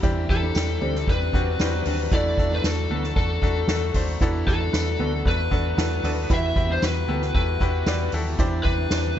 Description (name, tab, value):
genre	piano-driven pop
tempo	115 BPM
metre	4/4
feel	straight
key	E minor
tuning	A4 = 440 Hz
part	bright grand piano	accompaniment	0.0-9.2 s	E3 to D5	-30 LUFS	left 4 dB	none
part	sweeping resonant pad	sustained chords	0.0-9.2 s	E3 to A4	-37 LUFS	left 1 dB	none
part	fingerpicked steel-string acoustic guitar	riff	0.0-9.2 s	B3 to E4	-32 LUFS	right 7 dB	none
part	vintage muted fingered electric bass	bass	0.0-9.2 s	D2 to E2	-26 LUFS	equal	none
part	soft-mallet drum kit	drums	0.0-9.0 s	hi-hat, kick drum, ride cymbal, snare drum	-26 LUFS	equal	none
part	lead guitar through a small cranked amp	melody	0.3-9.2 s	A4 to E5	-27 LUFS	left 3 dB	overdrive
part	tambourine	percussion	0.5-9.0 s	none	-38 LUFS	right 6 dB	none
room	little or no reverb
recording	dark, warm production, nothing above 7.7 kHz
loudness	-20 LUFS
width	side -10 dB against mid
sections	0.0-9.2 A section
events	none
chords	0.0 Csus2; 2.1 D; 4.2 Bm7; 6.3 Emadd9; 8.4 Csus2